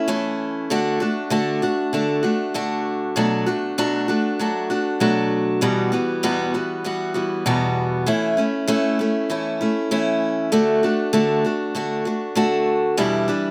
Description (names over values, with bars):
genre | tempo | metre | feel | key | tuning
acoustic folk duo or small band | 98 BPM | 4/4 | straight | E dorian | A4 = 441 Hz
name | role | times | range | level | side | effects
picked steel-string acoustic guitar | solo | 0.0-13.5 s | E2 to F#4 | -21 LUFS | equal | slapback echo
room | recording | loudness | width
little or no reverb | recorded outdoors, with no room sound | -21 LUFS | mono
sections
0.0-13.5 A section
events
none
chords
0.0 A/E; 0.7 D; 3.2 Bm7; 5.6 Emadd9; 8.1 A/E; 10.5 D; 13.0 Em7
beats
0.10 | 0.71 1.33 1.94 2.56 | 3.17 3.79 4.40 5.01 | 5.63 6.24 6.85 7.47 | 8.08 8.69 9.30 9.91 | 10.53 11.14 11.75 12.36 | 12.97